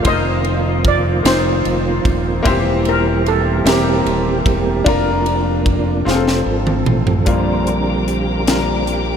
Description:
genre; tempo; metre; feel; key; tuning
slow gospel; 50 BPM (dotted quarters); 6/8; straight; Bb major; A4 = 440 Hz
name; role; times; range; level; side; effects
steel pan; melody; 0.0-6.4 s; Bb3 to Eb5; -22 LUFS; right 1 dB; tape echo
clear concert grand piano; accompaniment; 0.0-9.2 s; Bb2 to C5; -20 LUFS; left 4 dB; wide subtle chorus
tonewheel organ; sustained chords; 0.0-9.2 s; D3 to C5; -21 LUFS; right 4 dB; slow rotary speaker, chorus vibrato
crisp fusion drum kit; drums; 0.0-9.1 s; hi-hat, kick drum, ride cymbal, snare drum, toms; -20 LUFS; equal; none
modern bright fingered electric bass; bass; 0.1-9.2 s; Eb1 to Bb1; -20 LUFS; equal; none
warm studio string section; sustained chords; 7.3-9.2 s; F5 to D6; -28 LUFS; left 6 dB; none
room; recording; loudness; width
moderate huge ambient reverb, RT60 8.7 s; dreamy mix soaked in reverb; -14 LUFS; side -7 dB against mid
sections
0.0-7.3 A section; 7.3-9.2 B section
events
drum fill 6.1-7.3; tonewheel organ solo 7.3-9.2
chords
0.1 F7sus4; 2.5 C7/E; 4.9 Bb/F; 6.1 F; 7.3 Bb6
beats
| 0.06 1.26 | 2.46 3.66 | 4.86 6.07 | 7.27 8.47

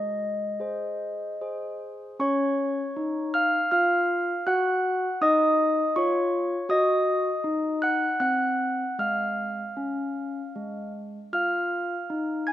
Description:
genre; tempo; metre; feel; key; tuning
classical, tune for handbells; 78 BPM; 3/4; straight; Db major; A4 = 440 Hz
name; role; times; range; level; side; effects
handbells; solo; 0.0-12.5 s; Ab3 to Ab6; -24 LUFS; equal; none
room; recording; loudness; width
moderate concert hall reverb, RT60 2.1 s; close, detailed microphones; -23 LUFS; side -13 dB against mid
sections
0.0-2.2 A section; 2.2-12.5 B section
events
none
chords
0.0 Ab; 2.2 Db; 4.5 Gb5; 6.7 Ebm; 9.0 Db/Ab; 10.5 Fm/Ab; 11.3 Ebsus2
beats
0.59 1.39 | 2.18 2.94 3.70 | 4.45 5.20 5.95 | 6.69 7.43 8.20 | 8.98 9.76 10.54 | 11.32 12.09

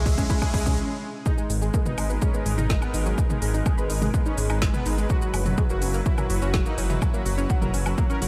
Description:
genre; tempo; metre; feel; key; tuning
melodic techno; 125 BPM; 4/4; straight; G# minor; A4 = 442 Hz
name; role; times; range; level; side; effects
lush unison pad; sustained chords; 0.0-8.3 s; G#3 to B4; -38 LUFS; equal; chorus, phaser, sidechain pumping
tight sequenced synth; arpeggios; 0.0-8.3 s; E3 to B5; -35 LUFS; equal; chorus, cassette tape, sidechain pumping, analog delay
dark detuned saw bass; bass; 0.0-8.3 s; F#1 to C#2; -29 LUFS; equal; sidechain pumping
riser; sound effects; 0.0-0.8 s; none; -38 LUFS; equal; none
deep house drum kit; drums; 0.1-8.3 s; hi-hat, shaker, snare drum, toms, woodblock; -34 LUFS; equal; studio reverb
electronic kick drum; drums; 0.1-8.1 s; none; -26 LUFS; equal; studio reverb
soft supersaw; melody; 0.2-8.3 s; F#3 to A#4; -34 LUFS; equal; sidechain pumping, tape echo
room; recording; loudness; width
light reverb, digital ambience; none; -24 LUFS; mono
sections
0.0-1.3 A section; 1.3-8.3 B section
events
build-up 0.0-1.3; drum fill 0.0-0.8; riser 0.0-0.8; filter sweep on synth arpeggio sound 0.0-1.3; stop 0.8-1.3; drop 1.3-8.3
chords
0.0 C#m; 1.3 G#madd9; 5.1 F#7sus4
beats
0.30 0.78 | 1.26 1.74 2.22 2.70 | 3.18 3.66 4.14 4.62 | 5.10 5.58 6.06 6.54 | 7.02 7.50 7.98

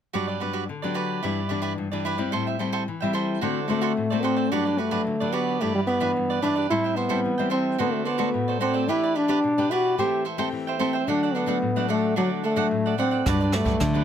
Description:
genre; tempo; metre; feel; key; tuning
samba and choro; 110 BPM; 4/4; straight; G major; A4 = 440 Hz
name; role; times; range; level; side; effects
cavaquinho; accompaniment; 0.1-14.0 s; D4 to G5; -29 LUFS; right 7 dB; none
nylon-string guitar; accompaniment; 0.1-14.0 s; G2 to G4; -28 LUFS; left 5 dB; none
warm trombone; melody; 3.7-14.0 s; F#3 to G4; -24 LUFS; equal; none
nylon-string guitar; bass; 13.3-14.0 s; G2 to D3; -24 LUFS; equal; none
jazz brush drum kit; drums; 13.3-13.9 s; hi-hat, kick drum, rim click; -26 LUFS; right 1 dB; none
room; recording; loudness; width
light reverb; close, detailed microphones; -22 LUFS; side -9 dB against mid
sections
0.1-4.5 A section; 4.5-14.0 B section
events
none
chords
0.1 Gmaj7; 1.2 Em7/G; 2.3 Am7; 3.4 D7; 4.5 Gmaj7; 5.6 Em7/G; 6.7 Am7; 7.8 D7; 8.9 Em7; 10.0 Am7/E; 11.1 D; 13.3 Gmaj7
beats
| 0.14 0.69 1.23 1.78 | 2.33 2.87 3.42 3.97 | 4.51 5.06 5.61 6.15 | 6.70 7.25 7.79 8.34 | 8.89 9.43 9.98 10.53 | 11.07 11.62 12.17 12.71 | 13.26 13.81

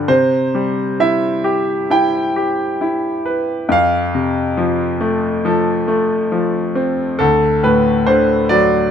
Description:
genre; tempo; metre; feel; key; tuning
classical, lyrical solo piano; 68 BPM; 4/4; rubato; C major; A4 = 442 Hz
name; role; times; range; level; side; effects
bright grand piano; solo; 0.0-8.9 s; D2 to G5; -14 LUFS; equal; none
room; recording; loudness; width
light reverb; close, detailed microphones; -14 LUFS; side -8 dB against mid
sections
0.1-8.9 A section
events
none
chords
0.1 Cmaj7; 3.7 F; 7.2 D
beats
| 0.07 0.99 1.91 2.81 | 3.71 4.59 5.46 6.33 | 7.20 8.07

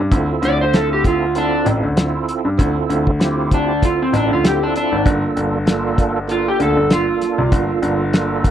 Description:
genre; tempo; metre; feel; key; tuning
straight-eighth soul blues; 97 BPM; 4/4; swing 56% on 16ths; D minor; A4 = 439 Hz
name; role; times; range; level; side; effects
tonewheel organ; accompaniment; 0.0-8.5 s; Bb3 to A4; -22 LUFS; right 5 dB; overdrive, chorus vibrato, slow rotary speaker
clear concert grand piano; bass; 0.0-8.5 s; G1 to G2; -19 LUFS; left 1 dB; none
cloth-damped thuddy drum kit; drums; 0.1-8.5 s; hi-hat, kick drum, snare drum; -17 LUFS; equal; none
electric slide guitar; melody; 0.5-8.5 s; C4 to D5; -18 LUFS; right 1 dB; none
room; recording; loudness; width
small room ambience; dry, close 1970s-style studio recording; -15 LUFS; side -10 dB against mid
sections
0.0-8.5 A section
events
electric slide guitar solo 0.0-8.5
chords
0.0 Dm9; 5.1 Gm9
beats
| 0.11 0.73 1.35 1.97 | 2.59 3.20 3.82 4.44 | 5.06 5.67 6.29 6.91 | 7.52 8.14

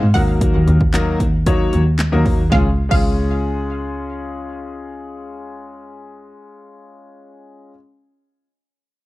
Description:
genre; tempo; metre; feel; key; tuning
dance-pop; 114 BPM; 4/4; straight; Db major; A4 = 439 Hz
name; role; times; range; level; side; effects
wide unison pluck; melody; 0.0-7.7 s; F5 to Gb5; -25 LUFS; right 1 dB; tape echo
clear grand piano; accompaniment; 0.0-7.7 s; Gb3 to Db5; -24 LUFS; left 2 dB; sidechain pumping
bright double bass; bass; 0.0-7.5 s; Db2 to Ab2; -17 LUFS; equal; sidechain pumping
house drum kit; drums; 0.1-3.1 s; crash cymbal, handclaps, hi-hat, kick drum, snare drum; -19 LUFS; equal; none
room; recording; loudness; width
digital ambience; dry, close 1970s-style studio recording; -14 LUFS; side -18 dB against mid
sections
0.0-2.5 A section; 2.5-6.7 B section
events
none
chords
0.1 Ebm; 2.5 Db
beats
| 0.41 0.94 1.46 1.99 | 2.52 3.04 3.57 4.10 | 4.62 5.15 5.67 6.20

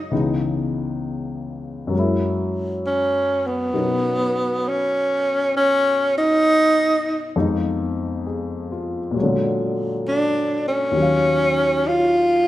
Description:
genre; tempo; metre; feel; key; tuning
jazz ballad; 66 BPM; 4/4; swing 68% on 8ths; unclear; A4 = 440 Hz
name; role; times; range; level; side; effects
breathy tenor saxophone; melody; 0.0-12.5 s; Cb4 to F4; -18 LUFS; equal; none
warm upright piano; accompaniment; 0.0-12.5 s; Db2 to F5; -23 LUFS; left 2 dB; none
room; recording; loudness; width
wet recital hall reverb, RT60 1.6 s; recorded in a church or concert hall; -18 LUFS; side -14 dB against mid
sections
0.0-12.5 A section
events
tenor saxophone solo 0.0-12.5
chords
0.1 Dbm9; 1.9 Gb9; 3.7 Bmaj9; 7.4 Fm7b5; 9.2 Bb7alt; 10.9 Ebm9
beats
| 0.12 1.02 1.92 2.83 | 3.74 4.64 5.55 6.45 | 7.35 8.25 9.15 10.05 | 10.95 11.84

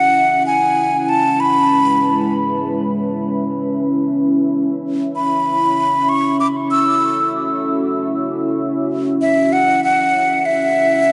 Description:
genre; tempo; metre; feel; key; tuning
ambient; free time; none; none; F# minor; A4 = 440 Hz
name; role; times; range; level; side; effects
breathy mellow silver concert flute; melody; 0.0-11.1 s; E5 to E6; -18 LUFS; equal; dub echo
deep dark ambient pad; sustained chords; 0.0-11.1 s; G#3 to E5; -21 LUFS; equal; chorus, built-in reverb
room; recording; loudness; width
moderate plate reverb, RT60 3.1 s; echo-heavy mix, nothing above 10.7 kHz; -17 LUFS; mono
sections
0.0-11.1 A section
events
none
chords
0.0 C#m7; 4.2 F#m7; 9.2 C#m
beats
free time

